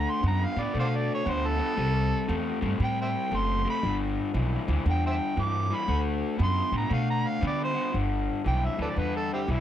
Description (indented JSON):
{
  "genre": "electric blues shuffle",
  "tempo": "117 BPM",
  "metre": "4/4",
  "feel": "swing 64% on 8ths",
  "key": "G major",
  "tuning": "A4 = 440 Hz",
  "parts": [
    { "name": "overdriven harmonica", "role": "melody", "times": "0.0-9.6 s", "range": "C4 to D6", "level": "-30 LUFS", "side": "right 2 dB", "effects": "none" },
    { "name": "raw garage guitar", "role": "riff", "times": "0.0-9.6 s", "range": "G2 to B3", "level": "-30 LUFS", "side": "left 3 dB", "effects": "overdrive" },
    { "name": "upright bass", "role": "bass", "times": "0.0-9.6 s", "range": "F#1 to D3", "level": "-28 LUFS", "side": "equal", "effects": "none" }
  ],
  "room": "little or no reverb",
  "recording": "none",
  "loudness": "-25 LUFS",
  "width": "side -10 dB against mid",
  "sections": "0.0-7.9 A section; 7.9-9.6 B section",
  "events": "harmonica solo 0.0-7.9",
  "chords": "0.0 D5; 1.8 C5; 3.8 G5; 5.9 D5; 7.9 G",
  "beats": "0.24 0.75 1.26 | 1.78 2.29 2.80 3.31 | 3.83 4.34 4.85 5.37 | 5.88 6.39 6.91 7.42 | 7.94 8.45 8.97 9.48"
}